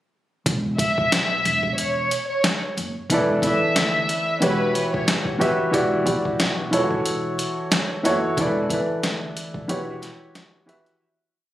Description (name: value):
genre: hip hop, boom-bap hip-hop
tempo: 91 BPM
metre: 4/4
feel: swing 55% on 16ths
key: E dorian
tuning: A4 = 439 Hz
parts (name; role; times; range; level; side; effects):
- upright bass; bass; 0.5-10.0 s; E1 to D2; -29 LUFS; equal; none
- boom bap sampler-style drum kit; drums; 0.5-11.0 s; hi-hat, kick drum, snare drum; -24 LUFS; equal; none
- warm studio violin section; melody; 0.8-5.2 s; B4 to E5; -23 LUFS; left 1 dB; high-pass filter, low-pass filter, analog delay
- dark grand piano; accompaniment; 3.1-11.0 s; E3 to E5; -22 LUFS; equal; cassette tape, high-pass filter, low-pass filter
room: light reverb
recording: recorded on a phone in the room, studio reverb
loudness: -20 LUFS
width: side -14 dB against mid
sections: 0.5-11.0 verse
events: fade-out 8.4-11.0; break 9.7-11.0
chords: 0.5 E5; 1.4 C#m/E; 3.1 E7sus4; 4.4 Em69; 5.7 Em7; 6.7 A6/E; 8.4 E7sus4; 9.7 Em69